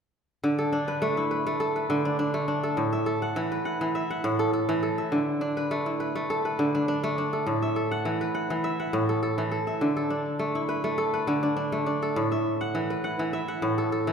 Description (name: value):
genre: west african traditional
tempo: 102 BPM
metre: 4/4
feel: straight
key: D major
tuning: A4 = 439 Hz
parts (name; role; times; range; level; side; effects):
- kora; arpeggios; 0.4-14.1 s; A2 to F#5; -24 LUFS; equal; none
room: wet concert hall reverb, RT60 1.9 s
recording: recorded in a church or concert hall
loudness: -25 LUFS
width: side -6 dB against mid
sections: 0.4-14.1 A section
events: none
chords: 0.4 D5; 2.8 A5; 5.1 D5; 7.5 A5; 9.8 D5; 12.2 A5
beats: | 0.44 1.02 1.61 2.19 | 2.78 3.37 3.95 4.54 | 5.12 5.71 6.30 6.88 | 7.47 8.06 8.64 9.23 | 9.82 10.40 10.99 11.58 | 12.16 12.75 13.34 13.92